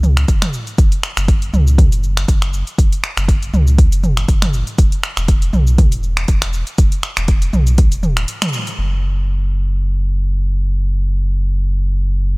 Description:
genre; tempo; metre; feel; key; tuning
afro house; 120 BPM; 4/4; swing 55% on 16ths; unclear; A4 = 442 Hz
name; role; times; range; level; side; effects
warm sub bass; bass; 0.0-12.4 s; E1 to C#2; -16 LUFS; equal; transformer saturation, sidechain pumping
deep house drum kit; drums; 0.0-8.8 s; finger snaps, hi-hat, shaker, toms; -20 LUFS; equal; none
electronic kick drum; drums; 0.3-7.9 s; none; -13 LUFS; equal; none
room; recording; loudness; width
little or no reverb; dry, gritty hardware recording; -13 LUFS; side -28 dB against mid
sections
0.0-8.8 A section; 8.8-12.4 B section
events
break 8.3-8.8; band accent 8.4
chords
none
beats
0.29 | 0.79 1.29 1.79 2.29 | 2.79 3.29 3.79 4.29 | 4.79 5.29 5.79 6.29 | 6.79 7.29 7.79 8.29 | 8.79 9.29 9.79 10.29 | 10.79 11.29 11.79 12.29

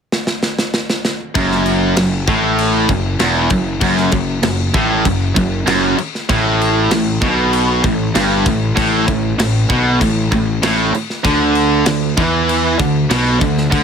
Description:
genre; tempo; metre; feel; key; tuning
heavy metal; 97 BPM; 4/4; straight; F# phrygian; A4 = 439 Hz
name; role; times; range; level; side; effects
tight metal drum kit; drums; 0.1-13.8 s; crash cymbal, kick drum, snare drum; -19 LUFS; equal; none
tight distorted guitar; riff; 1.3-13.8 s; E2 to E3; -19 LUFS; left 9 dB; distortion
raw garage guitar; riff; 1.4-13.8 s; E2 to E3; -21 LUFS; left 2 dB; overdrive
tight distorted guitar; riff; 1.4-13.8 s; E2 to E3; -18 LUFS; right 9 dB; distortion
fuzz picked electric bass; bass; 1.4-13.8 s; E1 to E2; -20 LUFS; equal; overdrive
room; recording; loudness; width
light reverb; none; -13 LUFS; side -7 dB against mid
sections
0.0-1.4 A section; 1.4-13.8 B section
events
drum fill 0.1-1.4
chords
0.0 N.C.; 1.4 F#m; 6.3 Gadd9; 11.2 Bmadd11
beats
0.12 0.74 | 1.35 1.97 2.59 3.21 | 3.83 4.44 5.06 5.68 | 6.30 6.92 7.53 8.15 | 8.77 9.39 10.01 10.63 | 11.25 11.87 12.48 13.10 | 13.72

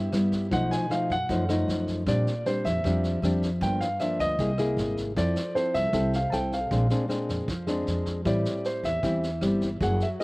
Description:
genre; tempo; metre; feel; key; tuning
bossa nova; 155 BPM; 4/4; straight; A minor; A4 = 440 Hz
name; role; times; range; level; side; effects
warm grand piano; melody; 0.0-10.2 s; C5 to A5; -29 LUFS; right 1 dB; slapback echo
nylon-string guitar; accompaniment; 0.0-10.2 s; F#2 to A4; -28 LUFS; left 1 dB; none
upright bass; bass; 0.0-10.0 s; F#1 to G2; -28 LUFS; equal; none
vintage brush drum kit; drums; 0.1-10.2 s; kick drum, rim click, snare drum; -37 LUFS; equal; none
room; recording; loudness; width
little or no reverb; recorded outdoors, with no room sound; -24 LUFS; side -22 dB against mid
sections
0.0-10.2 A section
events
none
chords
0.0 Cmaj7 (rootless); 0.5 B7#11; 2.1 Bb69; 3.6 Gm7; 4.4 C7alt; 5.2 Fmaj7; 6.7 Bb9; 8.3 Am7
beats
0.13 | 0.52 0.91 1.29 1.68 | 2.07 2.46 2.84 3.23 | 3.62 4.00 4.39 4.78 | 5.16 5.55 5.94 6.33 | 6.71 7.10 7.49 7.88 | 8.26 8.65 9.04 9.43 | 9.81 10.20

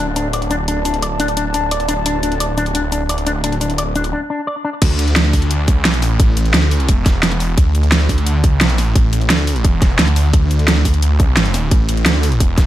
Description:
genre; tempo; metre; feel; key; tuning
dark technical drum and bass; 174 BPM; 4/4; straight; unclear; A4 = 440 Hz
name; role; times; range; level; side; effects
sweeping resonant pad; sustained chords; 0.0-4.1 s; D4 to A5; -24 LUFS; left 2 dB; chorus, sidechain pumping
electric guitar with an envelope filter; arpeggios; 0.0-4.7 s; D4 to D5; -20 LUFS; left 3 dB; sidechain pumping, low-pass filter, digital delay
snarling distorted saw bass; bass; 0.0-12.7 s; D1 to D2; -16 LUFS; equal; distortion, tube saturation, sidechain pumping
dubstep drum kit; drums; 0.2-12.6 s; crash cymbal, hi-hat, shaker, snare drum; -18 LUFS; right 1 dB; small room ambience
electronic kick drum; drums; 4.8-12.6 s; none; -13 LUFS; equal; small room ambience
room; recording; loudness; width
little or no reverb; none; -13 LUFS; side -13 dB against mid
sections
0.0-4.8 A section; 4.8-12.7 B section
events
break 4.1-4.8; drop 4.8-12.7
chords
0.0 D5; 4.8 Dsus2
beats
0.34 | 0.68 1.02 1.37 1.71 | 2.06 2.40 2.75 3.09 | 3.44 3.78 4.13 4.47 | 4.82 5.16 5.51 5.85 | 6.20 6.54 6.89 7.23 | 7.58 7.92 8.27 8.61 | 8.96 9.30 9.64 9.99 | 10.34 10.68 11.03 11.37 | 11.71 12.06 12.40

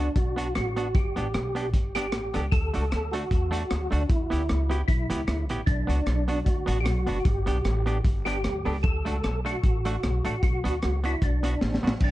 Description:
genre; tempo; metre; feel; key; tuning
ska; 152 BPM; 4/4; swing 55% on 8ths; unclear; A4 = 438 Hz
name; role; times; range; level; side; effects
percussive tonewheel organ; melody; 0.0-12.1 s; D4 to A4; -31 LUFS; equal; chorus vibrato, fast rotary speaker, tape echo
semi-hollow electric guitar; accompaniment; 0.0-11.9 s; A3 to G4; -32 LUFS; right 3 dB; none
upright bass; bass; 0.0-12.1 s; F#1 to E2; -28 LUFS; equal; none
crunchy breakbeat drum kit; drums; 0.2-12.1 s; crash cymbal, hi-hat, kick drum, rim click, snare drum; -27 LUFS; equal; none
room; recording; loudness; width
little or no reverb; dark, warm production, nothing above 10.3 kHz; -24 LUFS; side -16 dB against mid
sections
0.0-12.0 A section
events
drum fill 11.6-12.0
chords
0.0 Bm; 0.9 G; 2.5 D; 4.1 Em; 5.7 Bm; 7.3 G; 8.8 D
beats
0.15 0.55 | 0.94 1.33 1.73 2.12 | 2.52 2.91 3.31 3.70 | 4.10 4.49 4.89 5.28 | 5.68 6.07 6.47 6.86 | 7.26 7.65 8.05 8.44 | 8.84 9.23 9.63 10.02 | 10.42 10.81 11.21 11.61 | 12.00

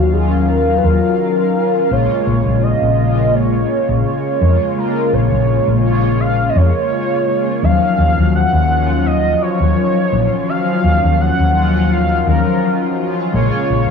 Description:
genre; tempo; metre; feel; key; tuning
vaporwave; 84 BPM; 4/4; swing 53% on 16ths; Eb minor; A4 = 439 Hz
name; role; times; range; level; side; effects
warm velvety synth lead; melody; 0.0-13.9 s; Gb4 to Gb5; -18 LUFS; right 2 dB; chorus, tape echo
mellow synth brass; accompaniment; 0.0-13.9 s; Db3 to F5; -17 LUFS; left 2 dB; wide subtle chorus, tape echo
woody fretless electric bass; bass; 0.0-13.8 s; Bb1 to F2; -15 LUFS; left 1 dB; none
room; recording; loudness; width
light reverb, digital ambience; cassette tape, small room ambience; -12 LUFS; side -6 dB against mid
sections
0.0-13.9 A section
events
none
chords
0.0 Ebm9; 1.9 Bbm7; 7.6 Ebm9; 13.3 Bbm7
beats
0.49 1.20 | 1.92 2.63 3.34 4.06 | 4.77 5.49 6.20 6.92 | 7.63 8.34 9.06 9.77 | 10.49 11.20 11.91 12.63 | 13.34

